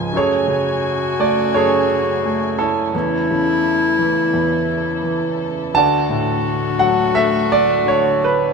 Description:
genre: acoustic folk-pop ballad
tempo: 86 BPM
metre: 4/4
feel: straight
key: F# minor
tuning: A4 = 439 Hz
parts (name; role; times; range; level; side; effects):
- clear grand piano; melody; 0.0-8.5 s; C#2 to A5; -17 LUFS; right 2 dB; none
- muted chamber string section; sustained chords; 0.0-8.5 s; E2 to G#5; -27 LUFS; right 1 dB; none
- clear clarinet; second line; 0.1-8.5 s; E4 to F#4; -21 LUFS; left 6 dB; none
room: moderate plate reverb, RT60 2.5 s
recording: minimal, uncompressed stereo recording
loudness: -15 LUFS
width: side -4 dB against mid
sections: 0.0-8.5 A section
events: none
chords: 0.1 F#madd9; 2.9 A/E; 5.7 D

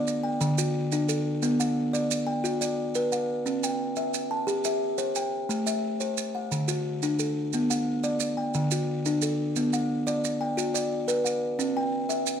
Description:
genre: southern african traditional, mbira-style interlocking cycle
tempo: 118 BPM (dotted quarters)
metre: 12/8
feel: straight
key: unclear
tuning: A4 = 440 Hz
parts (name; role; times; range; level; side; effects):
- buzzing kalimba; arpeggios; 0.0-12.4 s; D3 to A5; -25 LUFS; equal; none
- maracas; percussion; 0.1-12.4 s; none; -33 LUFS; right 12 dB; none
room: light reverb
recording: none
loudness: -25 LUFS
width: side -8 dB against mid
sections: 0.0-12.4 A section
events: none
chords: 0.4 D; 1.4 Bm; 3.5 C; 5.5 Am; 6.5 D; 7.5 Bm; 8.5 D; 9.6 Bm; 11.6 C

